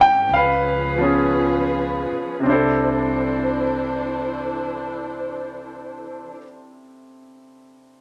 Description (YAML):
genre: jazz ballad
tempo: 53 BPM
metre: 4/4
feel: swing 68% on 8ths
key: C major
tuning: A4 = 441 Hz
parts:
  - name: clear concert grand piano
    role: accompaniment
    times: 0.0-8.0 s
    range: C3 to G5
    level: -21 LUFS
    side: equal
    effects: none
  - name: dark studio string section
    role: sustained chords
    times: 0.0-6.4 s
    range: E3 to C5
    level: -28 LUFS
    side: equal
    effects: none
  - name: upright bass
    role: bass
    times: 0.0-6.3 s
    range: C2 to Ab2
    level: -34 LUFS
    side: equal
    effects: none
room: wet studio reverb, RT60 0.8 s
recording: lossy compression artefacts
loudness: -21 LUFS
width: mono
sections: 0.0-2.5 A section; 2.5-7.0 B section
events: slowing down 0.0-2.5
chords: 0.3 Db7; 2.5 C69